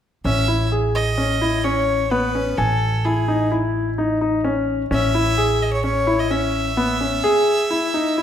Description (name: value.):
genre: contemporary instrumental, chamber music in an uneven meter.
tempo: 129 BPM.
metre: 5/4.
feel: straight.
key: A lydian.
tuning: A4 = 441 Hz.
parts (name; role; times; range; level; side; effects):
upright bass; bass; 0.2-7.2 s; A1; -23 LUFS; right 1 dB; none.
clear violin; melody; 0.3-8.2 s; G#4 to E5; -23 LUFS; right 1 dB; none.
clear concert grand piano; arpeggios; 0.3-8.2 s; B3 to G#5; -20 LUFS; left 2 dB; none.
room: wet recital hall reverb, RT60 1.4 s.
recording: none.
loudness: -17 LUFS.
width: side -9 dB against mid.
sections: 0.3-8.2 A section.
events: none.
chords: 0.3 Amaj7.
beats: | 0.25 0.72 1.19 1.65 2.12 | 2.58 3.05 3.52 3.98 4.45 | 4.91 5.38 5.84 6.31 6.78 | 7.24 7.71 8.17.